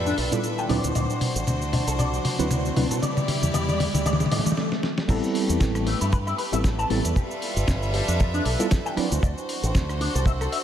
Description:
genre	nu-disco, nu disco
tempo	116 BPM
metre	4/4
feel	swing 56% on 16ths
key	A minor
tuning	A4 = 439 Hz
part	clear studio violin section	sustained chords	0.0-10.6 s	G3 to E5	-30 LUFS	equal	sidechain pumping
part	fingered electric bass with an envelope filter	bass	0.0-10.5 s	G1 to B2	-27 LUFS	equal	none
part	riser and swell	sound effects	0.6-5.1 s	none	-34 LUFS	right 1 dB	none
part	electric guitar with an envelope filter	riff	0.1-10.6 s	G3 to A5	-32 LUFS	left 2 dB	ensemble chorus, low-pass filter, diffuse ambient delay
part	dusty soul sampler-style drum kit	drums	0.1-10.6 s	crash cymbal, hi-hat, rim click, shaker, snare drum, toms	-27 LUFS	left 1 dB	none
part	tine electric piano	accompaniment	0.3-9.0 s	F#3 to B4	-28 LUFS	right 1 dB	medium stereo tremolo, low-pass filter, diffuse ambient delay
part	kick drum	drums	5.1-10.4 s	none	-22 LUFS	equal	none
room	wet lush hall reverb, RT60 1.8 s, studio ambience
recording	dreamy mix soaked in reverb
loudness	-21 LUFS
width	side -10 dB against mid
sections	0.0-5.1 A section; 5.1-10.6 B section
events	build-up 0.0-5.1; drum fill 0.0-4.6, 4.6-5.1; swell 4.1-5.1; stop 4.6-5.1; drop 5.1-10.6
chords	0.0 G13; 0.7 D7; 3.0 Em7; 5.1 Am9; 7.2 G13; 9.0 D7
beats	0.44 | 0.95 1.47 1.99 2.51 | 3.02 3.54 4.06 4.58 | 5.09 5.61 6.13 6.64 | 7.16 7.68 8.20 8.71 | 9.23 9.75 10.27

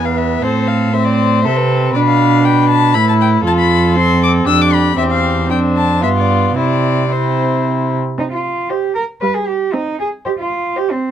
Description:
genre	quick classical-period movement for string quartet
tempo	117 BPM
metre	3/4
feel	rubato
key	C major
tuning	A4 = 438 Hz
part	rich violin	melody	0.0-11.1 s	B4 to E6	-19 LUFS	left 5 dB	none
part	dark violin	second line	0.0-11.1 s	D4 to C5	-19 LUFS	left 6 dB	none
part	warm viola	accompaniment	0.0-10.2 s	G3 to F4	-17 LUFS	right 2 dB	none
part	rich cello	bass	0.0-11.1 s	E2 to B4	-16 LUFS	right 3 dB	none
room	light reverb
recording	close, detailed microphones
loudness	-12 LUFS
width	side -9 dB against mid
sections	0.0-8.2 A section; 8.2-11.1 B section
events	none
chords	0.4 Am; 1.9 Bm7b5; 2.9 A5; 3.5 F; 4.5 G7/F; 5.0 C/E; 5.5 Dm7/F; 6.0 G7; 6.6 C; 8.2 Cm; 9.2 G7; 9.7 Cm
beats	| 0.44 0.95 1.45 | 1.95 2.45 2.95 | 3.46 3.96 4.47 | 4.98 5.49 6.03 | 6.57 7.12 7.66 | 8.20 8.71 9.23 | 9.75 10.26 10.78

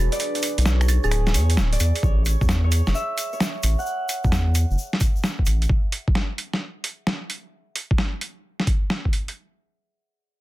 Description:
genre	UK garage, two-step garage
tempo	131 BPM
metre	4/4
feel	swing 67% on 16ths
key	A major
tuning	A4 = 440 Hz
part	Celtic harp	melody	0.0-5.4 s	G#4 to F#5	-30 LUFS	right 1 dB	ping-pong delay
part	warm analog pad	sustained chords	0.0-2.0 s	D4 to B4	-34 LUFS	right 1 dB	chorus, sidechain pumping
part	saturated sub bass	bass	0.0-5.7 s	D1 to E2	-19 LUFS	equal	none
part	boom bap sampler-style drum kit	drums	0.1-9.3 s	claves, finger snaps, hi-hat, snare drum	-25 LUFS	equal	overdrive
part	egg shaker	percussion	0.1-5.7 s	none	-35 LUFS	left 4 dB	none
part	electronic kick drum	drums	2.0-9.1 s	none	-21 LUFS	equal	overdrive
room	little or no reverb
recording	dense, heavily limited modern master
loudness	-20 LUFS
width	side -17 dB against mid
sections	0.0-2.0 A section; 2.0-9.4 B section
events	drop 0.0-2.0; kick drops out 0.2-2.0; filter sweep on sub bass 2.0-5.7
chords	0.0 E7; 2.0 A5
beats	| 0.20 0.66 1.11 1.57 | 2.03 2.49 2.95 3.40 | 3.86 4.32 4.78 5.24 | 5.69 6.15 6.61 7.07 | 7.53 7.98 8.44 8.90

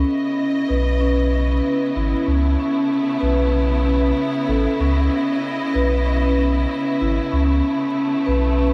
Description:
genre	hip hop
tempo	95 BPM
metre	4/4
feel	swing 63% on 16ths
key	C# minor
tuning	A4 = 440 Hz
part	vibraphone with medium mallets	accompaniment	0.0-8.7 s	C#4 to B4	-22 LUFS	equal	none
part	warm studio string section	sustained chords	0.0-8.7 s	C#3 to D#5	-28 LUFS	equal	none
part	warm sub bass	bass	0.0-8.7 s	G#1 to C#2	-22 LUFS	equal	none
room	moderate huge ambient reverb, RT60 5.1 s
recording	dreamy mix soaked in reverb, vinyl crackle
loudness	-20 LUFS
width	mono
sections	0.0-8.7 A section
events	none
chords	0.0 C#m9; 2.3 Aadd9; 4.8 C#m9; 7.3 Aadd9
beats	0.38 1.01 1.64 | 2.27 2.90 3.54 4.17 | 4.80 5.43 6.06 6.70 | 7.33 7.96 8.59

